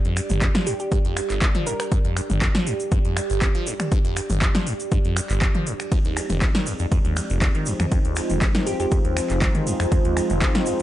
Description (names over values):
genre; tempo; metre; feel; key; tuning
acid house; 120 BPM; 4/4; straight; unclear; A4 = 441 Hz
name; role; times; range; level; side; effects
liquid acid bass; riff; 0.0-10.8 s; F1 to F3; -26 LUFS; equal; phaser, tube saturation, wide subtle chorus, sidechain pumping
electro analog drum machine; drums; 0.0-10.8 s; finger snaps, handclaps, hi-hat, ride cymbal, snare drum, toms; -26 LUFS; equal; overdrive
deep dark ambient pad; texture; 0.0-10.8 s; F4 to D5; -29 LUFS; right 3 dB; chorus, built-in reverb, sidechain pumping
egg shaker; percussion; 0.2-10.8 s; none; -35 LUFS; right 2 dB; none
electronic kick drum; drums; 0.4-10.5 s; none; -21 LUFS; equal; overdrive
glassy wavetable pluck; melody; 0.7-1.9, 8.7-8.9 s; G4 to Bb4; -30 LUFS; right 1 dB; chorus, tape echo
warm analog pad; sustained chords; 5.9-10.8 s; F3 to Eb4; -30 LUFS; left 1 dB; chorus, sidechain pumping
room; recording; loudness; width
digital ambience; nothing above 11.0 kHz; -19 LUFS; side -14 dB against mid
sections
0.0-10.8 A section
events
none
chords
0.0 G5; 5.9 Fm7